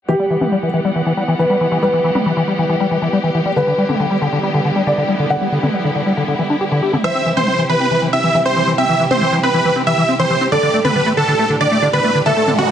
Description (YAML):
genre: uplifting trance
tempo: 138 BPM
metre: 4/4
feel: straight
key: E minor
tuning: A4 = 440 Hz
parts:
  - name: dark concert grand piano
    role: second line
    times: 0.1-12.7 s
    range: G4 to G5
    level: -21 LUFS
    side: right 1 dB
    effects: dub echo
  - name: rich studio string section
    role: sustained chords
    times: 0.1-12.7 s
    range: A2 to F#5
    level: -22 LUFS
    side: right 1 dB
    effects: vintage 12-bit sampler grit, low-pass filter
  - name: liquid acid bass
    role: arpeggios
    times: 0.1-12.6 s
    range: D3 to G4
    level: -18 LUFS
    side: left 2 dB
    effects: chorus, tape echo
  - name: electronic toms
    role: drums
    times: 0.4-12.7 s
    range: none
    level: -22 LUFS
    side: left 1 dB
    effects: low-pass filter on toms, low-pass filter on room
  - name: dense compressed supersaw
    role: melody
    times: 7.0-12.7 s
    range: F#4 to E5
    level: -15 LUFS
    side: right 2 dB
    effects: cassette tape, tape echo
  - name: noise sweep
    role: sound effects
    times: 12.4-12.7 s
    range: none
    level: -21 LUFS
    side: right 4 dB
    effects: none
room: light reverb, digital ambience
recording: heavily compressed radio sound, nothing above 10.3 kHz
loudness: -13 LUFS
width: side -9 dB against mid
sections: 0.1-12.7 A section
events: filter sweep on acid bass 0.1-12.7; noise sweep 12.4-12.7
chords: 0.1 Emadd9; 3.6 G6/D; 7.0 C; 10.5 Dsus4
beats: | 0.09 0.52 0.95 1.39 | 1.82 2.26 2.69 3.13 | 3.56 4.00 4.43 4.87 | 5.30 5.74 6.17 6.61 | 7.04 7.48 7.91 8.35 | 8.78 9.22 9.65 10.09 | 10.52 10.96 11.39 11.82 | 12.26 12.69